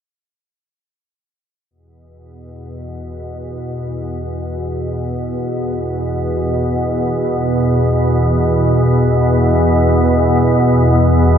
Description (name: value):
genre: ambient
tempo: free time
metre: none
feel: none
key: unclear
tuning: A4 = 438 Hz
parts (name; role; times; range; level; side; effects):
- organ-like drone; drone; 2.6-11.4 s; E2 to B2; -14 LUFS; equal; ensemble chorus, built-in reverb
room: wet cathedral reverb, RT60 5.3 s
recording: none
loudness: -13 LUFS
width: side -8 dB against mid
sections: 1.7-11.4 A section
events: fade-in on synth drone 1.7-11.4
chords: 1.7 E5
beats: free time